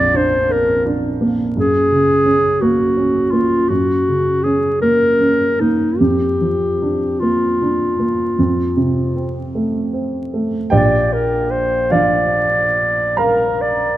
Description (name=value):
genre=classical, romantic duo for clarinet and grand piano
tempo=46-58 BPM (dotted quarters)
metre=12/8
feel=rubato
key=Bb major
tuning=A4 = 443 Hz
part: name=mellow clarinet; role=melody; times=0.0-14.0 s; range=Eb4 to D5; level=-16 LUFS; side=left 1 dB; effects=none
part: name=dark baby grand piano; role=accompaniment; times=0.0-14.0 s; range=Bb1 to Bb5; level=-17 LUFS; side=right 2 dB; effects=none
room=moderate concert hall reverb, RT60 2.1 s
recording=close, detailed microphones, vinyl crackle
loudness=-14 LUFS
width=side -14 dB against mid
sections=0.0-10.7 A section; 10.7-14.0 B section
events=none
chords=0.0 Bb; 1.6 Gb; 6.0 Bb/F; 8.4 F; 10.7 Bb